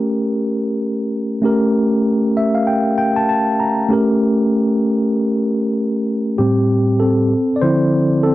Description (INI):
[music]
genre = soul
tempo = 97 BPM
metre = 4/4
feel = swing 58% on 16ths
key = unclear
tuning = A4 = 441 Hz
[part]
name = mellow tine electric piano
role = solo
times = 0.0-8.3 s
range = A2 to Bb5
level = -14 LUFS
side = equal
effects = fast stereo tremolo
[sound]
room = light reverb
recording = dry, close 1970s-style studio recording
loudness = -14 LUFS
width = side -16 dB against mid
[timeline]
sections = 0.0-3.9 A section; 3.9-6.4 B section; 6.4-8.3 C section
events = tine electric piano fill 2.1-3.9; tine electric piano solo 6.4-8.3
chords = 0.0 A7b9; 6.4 Am7; 7.3 Dm9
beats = 0.20 0.82 | 1.44 2.06 2.68 3.30 | 3.92 4.54 5.16 5.78 | 6.40 7.01 7.63 8.25